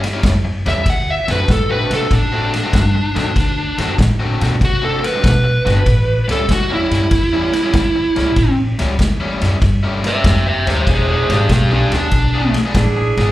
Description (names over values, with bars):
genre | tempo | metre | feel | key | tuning
electric blues shuffle | 96 BPM | 4/4 | swing 68% on 8ths | unclear | A4 = 440 Hz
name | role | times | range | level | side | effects
overdriven semi-hollow guitar | riff | 0.0-13.3 s | A2 to G#4 | -23 LUFS | left 2 dB | slapback echo
vintage drum kit | drums | 0.0-13.3 s | kick drum, ride cymbal, snare drum | -18 LUFS | equal | none
upright bass | bass | 0.2-13.3 s | E1 to C3 | -18 LUFS | equal | none
smooth overdriven lead guitar | melody | 0.7-12.5 s | D4 to F#5 | -18 LUFS | right 1 dB | slapback echo
mellow saxophone section | stabs | 10.9-13.3 s | D4 to G#4 | -20 LUFS | right 3 dB | slapback echo
room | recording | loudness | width
light reverb | live gig heard through the venue's PA, club reverb | -13 LUFS | side -15 dB against mid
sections
0.0-13.3 A section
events
lead electric guitar solo 0.0-13.3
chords
0.0 A7; 0.9 D7; 5.9 A7; 10.9 E7